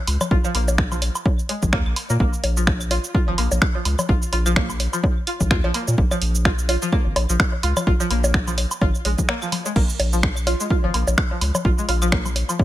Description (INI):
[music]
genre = minimal techno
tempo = 127 BPM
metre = 4/4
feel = swing 57% on 16ths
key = Bb minor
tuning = A4 = 440 Hz
[part]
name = saturated sub bass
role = bass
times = 0.1-12.4 s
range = Ab1 to Bb2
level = -22 LUFS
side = equal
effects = sidechain pumping
[part]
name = punchy analog drum machine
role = drums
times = 0.1-12.6 s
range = cabasa, crash cymbal, finger snaps, hi-hat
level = -25 LUFS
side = right 1 dB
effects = overdrive
[part]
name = woodblock, bongos, congas and claves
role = percussion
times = 0.1-12.6 s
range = none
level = -28 LUFS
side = left 2 dB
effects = ping-pong delay
[part]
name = string-like resonator pluck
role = riff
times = 0.3-12.5 s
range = F3 to F4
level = -27 LUFS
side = left 1 dB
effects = wide subtle chorus, cassette tape, sidechain pumping, digital delay
[part]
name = electronic kick drum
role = drums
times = 0.3-12.6 s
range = none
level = -20 LUFS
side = equal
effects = overdrive
[sound]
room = digital ambience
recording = none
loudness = -18 LUFS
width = side -14 dB against mid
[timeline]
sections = 0.0-12.6 A section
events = break 9.3-9.8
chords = 0.0 Bb5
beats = | 0.31 0.78 1.26 1.73 | 2.20 2.67 3.15 3.62 | 4.09 4.56 5.04 5.51 | 5.98 6.45 6.92 7.40 | 7.87 8.34 8.81 9.29 | 9.76 10.23 10.70 11.18 | 11.65 12.12 12.59